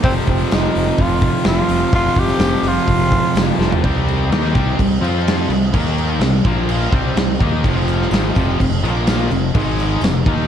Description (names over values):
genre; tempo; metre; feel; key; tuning
classic rock; 126 BPM; 4/4; straight; unclear; A4 = 440 Hz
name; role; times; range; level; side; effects
growling tenor saxophone; melody; 0.0-3.6 s; C4 to G4; -20 LUFS; right 1 dB; slapback echo, analog delay
bright tonewheel organ; sustained chords; 0.0-10.5 s; Ab3 to F5; -29 LUFS; equal; none
distorted electric guitar; riff; 0.0-10.5 s; F2 to F4; -22 LUFS; right 8 dB; overdrive
tight distorted guitar; riff; 0.0-10.5 s; F2 to F4; -22 LUFS; left 9 dB; distortion
fuzz fingered electric bass; bass; 0.0-10.5 s; F1 to F2; -20 LUFS; equal; overdrive
big rock drum kit; drums; 0.0-10.4 s; crash cymbal, hi-hat, kick drum, snare drum, toms; -19 LUFS; equal; none
tambourine; percussion; 0.5-3.5, 7.9-10.4 s; none; -42 LUFS; right 3 dB; none
room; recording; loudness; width
light reverb, small room ambience; cassette tape; -14 LUFS; side -9 dB against mid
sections
0.0-3.8 A section; 3.8-10.5 B section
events
drum fill 3.6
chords
0.0 Fm; 3.8 Cm; 5.0 F5; 5.5 C5; 5.7 Eb5; 6.2 C5; 6.4 Bb5; 6.9 Cm; 7.6 F5; 8.8 Bb5; 9.3 F5; 9.5 Ab5; 10.0 F5